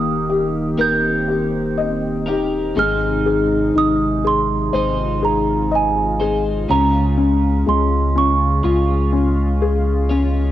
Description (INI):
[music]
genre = pop ballad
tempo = 61 BPM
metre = 4/4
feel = straight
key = Ab major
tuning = A4 = 440 Hz
[part]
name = celesta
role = melody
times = 0.0-10.1 s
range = Ab5 to G6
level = -21 LUFS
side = right 6 dB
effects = cassette tape
[part]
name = felt-muted upright piano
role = accompaniment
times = 0.0-10.5 s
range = Db3 to Eb5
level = -21 LUFS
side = left 5 dB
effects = cassette tape
[part]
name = chorused pulse-width pad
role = sustained chords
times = 0.0-10.5 s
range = C3 to G4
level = -26 LUFS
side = equal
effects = cassette tape
[part]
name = twelve-string electric guitar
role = arpeggios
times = 0.0-10.5 s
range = Ab2 to Db5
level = -23 LUFS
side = right 1 dB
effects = spring reverb, cassette tape
[part]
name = warm sub bass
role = bass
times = 0.0-10.5 s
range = Eb1 to Db2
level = -22 LUFS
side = equal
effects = none
[sound]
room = moderate lush hall reverb, RT60 2.4 s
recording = home recording on cassette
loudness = -15 LUFS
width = side -12 dB against mid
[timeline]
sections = 0.0-10.5 A section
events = none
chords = 0.0 Eb; 2.8 Ab; 6.7 Db